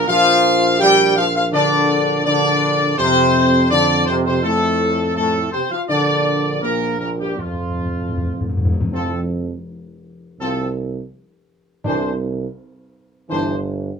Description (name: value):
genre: classical, ceremonial fanfare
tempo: 83 BPM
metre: 4/4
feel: straight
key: F major from 8.9 s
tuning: A4 = 439 Hz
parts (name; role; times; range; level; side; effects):
- clear trumpet section; melody; 0.0-13.6 s; F4 to G5; -18 LUFS; left 1 dB; none
- dark French horn section; sustained chords; 0.0-13.6 s; F3 to G4; -22 LUFS; left 3 dB; none
- dark trombone section; sustained chords; 0.0-13.6 s; F2 to G3; -22 LUFS; right 1 dB; none
- warm tuba; bass; 0.0-13.9 s; G1 to F2; -23 LUFS; right 4 dB; none
- timpani; percussion; 7.4-12.9 s; F2 to C3; -23 LUFS; left 1 dB; none
room: moderate studio reverb, RT60 0.6 s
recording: minimal, uncompressed stereo recording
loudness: -15 LUFS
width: side -6 dB against mid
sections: 0.0-8.9 A section; 8.9-14.0 B section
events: timpani fill 7.4-8.9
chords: 0.0 Bb; 3.0 F; 5.9 Bb; 7.4 N.C.; 8.9 F5; 11.8 Cadd9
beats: | 0.08 0.81 1.53 2.25 | 2.98 3.70 4.43 5.16 | 5.88 6.62 7.38 8.14 | 8.92 9.66 10.40 11.12 | 11.85 12.58 13.30